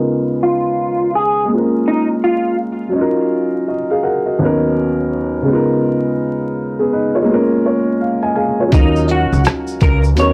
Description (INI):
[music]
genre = lo-fi hip hop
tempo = 83 BPM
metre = 4/4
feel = swing 64% on 16ths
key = Eb minor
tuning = A4 = 440 Hz
[part]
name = dark upright piano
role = accompaniment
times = 0.0-10.3 s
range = D#2 to Ab5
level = -18 LUFS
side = equal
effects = cassette tape, low-pass filter
[part]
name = electric guitar through a small old amp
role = melody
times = 0.4-2.6, 8.7-10.3 s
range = Eb4 to Db5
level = -20 LUFS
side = equal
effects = analog chorus, low-pass filter
[part]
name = upright bass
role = bass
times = 8.7-10.3 s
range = Db2 to Eb2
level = -18 LUFS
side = equal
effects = tube saturation
[part]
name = lo-fi sampler-style drum kit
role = drums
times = 8.7-10.3 s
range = hi-hat, kick drum, rim click, shaker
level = -16 LUFS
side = equal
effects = none
[part]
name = tube shaker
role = percussion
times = 8.7-10.3 s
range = none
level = -40 LUFS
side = equal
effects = none
[sound]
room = moderate small room reverb, RT60 0.6 s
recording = dry, gritty hardware recording, vinyl crackle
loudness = -16 LUFS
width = mono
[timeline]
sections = 0.0-8.7 A section; 8.7-10.3 B section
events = filter sweep 0.0-8.7; upright piano fill 7.3-8.7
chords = 0.0 Db13; 1.5 Bbm7; 2.9 Ebm7; 4.4 Bmaj9/D#; 5.5 Db13; 7.3 Bbm7; 8.7 Ebm7